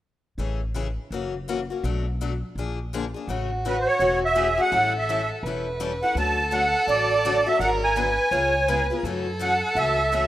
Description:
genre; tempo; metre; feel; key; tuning
acoustic string swing (jazz manouche); 166 BPM; 4/4; swing 61% on 8ths; A major; A4 = 436 Hz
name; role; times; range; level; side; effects
picked steel-string acoustic guitar; accompaniment; 0.4-10.2 s; B2 to A4; -30 LUFS; left 6 dB; none
upright bass; bass; 0.4-10.3 s; E1 to F#2; -30 LUFS; equal; none
warm violin; second line; 3.3-10.3 s; F#4 to C#5; -27 LUFS; right 2 dB; none
musette accordion; melody; 3.7-10.3 s; B4 to A5; -22 LUFS; right 1 dB; none
room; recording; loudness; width
light reverb, studio reverb; rough home demo mix; -21 LUFS; side -13 dB against mid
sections
0.4-3.3 A section; 3.3-10.3 B section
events
none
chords
0.4 Amaj7; 1.1 F#7; 1.8 Bm7; 2.6 Bb7; 3.3 A6; 4.7 A7; 6.2 Dmaj7; 7.6 G#m7b5; 8.3 C#7; 9.0 F#m7

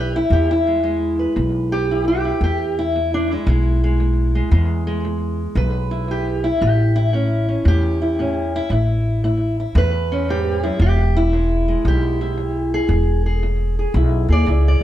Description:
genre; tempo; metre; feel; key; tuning
acoustic country blues, solo or duo; 114 BPM; 4/4; swing 66% on 8ths; E major; A4 = 442 Hz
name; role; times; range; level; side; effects
fingerpicked steel-string acoustic guitar; melody; 0.0-14.8 s; E2 to D5; -20 LUFS; equal; slapback echo
upright bass; bass; 0.0-14.8 s; E1 to E2; -18 LUFS; equal; none
room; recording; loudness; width
light reverb; dark, warm production; -16 LUFS; side -12 dB against mid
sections
0.0-14.8 A section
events
none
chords
0.0 E; 6.6 A; 10.8 E

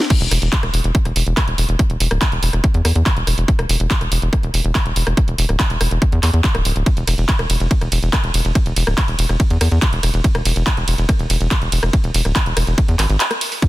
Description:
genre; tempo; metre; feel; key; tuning
psychedelic trance; 142 BPM; 4/4; straight; E major; A4 = 440 Hz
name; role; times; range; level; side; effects
techno drum kit; drums; 0.0-13.7 s; crash cymbal, handclaps, hi-hat, ride cymbal, rim click, snare drum; -21 LUFS; right 1 dB; overdrive
electronic kick drum; drums; 0.1-13.7 s; none; -17 LUFS; equal; overdrive
tight sequencer bass; bass; 0.2-13.2 s; D1 to E2; -17 LUFS; equal; none
room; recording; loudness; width
digital ambience; dense, heavily limited modern master; -15 LUFS; side -17 dB against mid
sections
0.1-13.7 A section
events
drop 0.1-13.7; break 13.2-13.6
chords
none

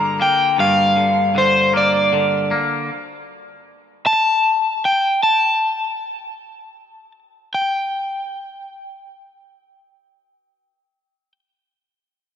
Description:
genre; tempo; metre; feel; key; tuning
rock; 52 BPM (dotted quarters); 6/8; straight; G minor; A4 = 441 Hz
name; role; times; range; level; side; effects
overdriven electric guitar; melody; 0.0-11.3 s; C5 to Bb5; -16 LUFS; left 1 dB; slapback echo
twangy electric guitar; arpeggios; 0.0-2.9 s; G2 to Bb3; -20 LUFS; left 2 dB; spring reverb, slapback echo
room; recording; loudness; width
moderate lush hall reverb, RT60 2.7 s; none; -15 LUFS; side -8 dB against mid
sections
0.0-7.5 A section; 7.5-9.9 B section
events
none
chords
0.0 Gm7; 2.9 N.C.

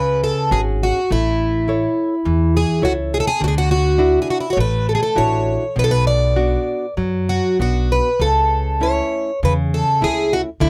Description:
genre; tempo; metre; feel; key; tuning
fado-style ballad; 96-107 BPM; 4/4; rubato; unclear; A4 = 440 Hz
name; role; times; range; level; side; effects
picked plugged-in twelve-string acoustic guitar; melody; 0.0-10.7 s; E4 to D5; -20 LUFS; equal; none
nylon-string guitar; accompaniment; 0.0-10.7 s; B2 to C#5; -24 LUFS; equal; none
upright bass; bass; 0.0-10.7 s; G#1 to F#2; -23 LUFS; equal; none
room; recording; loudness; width
little or no reverb; close, detailed microphones; -18 LUFS; mono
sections
0.0-10.7 A section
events
none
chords
0.0 F#sus2; 1.1 A; 3.4 Dadd9; 5.8 Bm; 8.2 A/C#

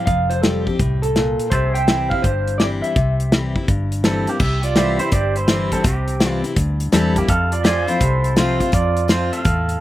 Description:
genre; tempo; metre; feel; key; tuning
honky-tonk and classic country; 166 BPM; 4/4; swing 65% on 8ths; unclear; A4 = 440 Hz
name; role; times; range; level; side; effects
electric guitar through a small old amp; melody; 0.0-4.0 s; G4 to G5; -22 LUFS; right 1 dB; slapback echo
picked steel-string acoustic guitar; accompaniment; 0.0-9.8 s; F2 to G4; -23 LUFS; left 4 dB; slapback echo
pedal steel guitar; sustained chords; 0.0-9.8 s; G4 to A5; -31 LUFS; equal; wide subtle chorus
vintage muted fingered electric bass; bass; 0.1-9.8 s; F1 to F2; -21 LUFS; equal; none
natural country drum kit; drums; 0.1-9.7 s; crash cymbal, hi-hat, kick drum, snare drum; -19 LUFS; equal; none
pedal steel guitar; second line; 4.0-9.8 s; Bb3 to F5; -21 LUFS; right 3 dB; slapback echo
room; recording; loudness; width
little or no reverb; recorded outdoors, with no room sound; -16 LUFS; side -14 dB against mid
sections
0.0-4.4 A section; 4.4-9.8 B section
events
pedal steel guitar solo 4.4-9.8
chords
0.0 Fadd9; 1.5 C; 7.3 F

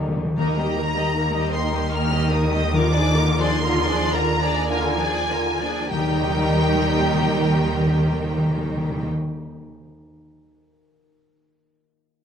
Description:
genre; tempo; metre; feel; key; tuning
classical, slow romantic movement for symphony orchestra; 47-78 BPM; 3/4; rubato; Eb major; A4 = 440 Hz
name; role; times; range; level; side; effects
warm symphonic violin section; second line; 0.0-9.1 s; Eb4 to Eb5; -27 LUFS; left 2 dB; none
warm symphonic viola section; accompaniment; 0.0-9.1 s; D3 to F4; -26 LUFS; right 3 dB; none
concert harp; arpeggios; 0.0-9.8 s; Eb3 to Bb5; -30 LUFS; left 8 dB; none
rich symphonic double bass section; bass; 0.0-9.1 s; Eb2; -27 LUFS; right 2 dB; none
warm symphonic cello section; bass; 0.0-9.1 s; D3 to Eb3; -26 LUFS; right 2 dB; none
timpani; percussion; 0.0-9.1 s; Eb3; -25 LUFS; left 1 dB; none
rich symphonic violin section; melody; 0.4-9.1 s; G5 to F6; -27 LUFS; left 2 dB; none
room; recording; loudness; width
moderate recital hall reverb, RT60 1.9 s; none; -19 LUFS; side -8 dB against mid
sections
0.4-5.9 A section; 5.9-12.2 B section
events
timpani fill 0.0-0.4; slowing down 0.0-5.9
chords
0.4 Eb; 2.7 Bb7/Eb; 5.9 Eb

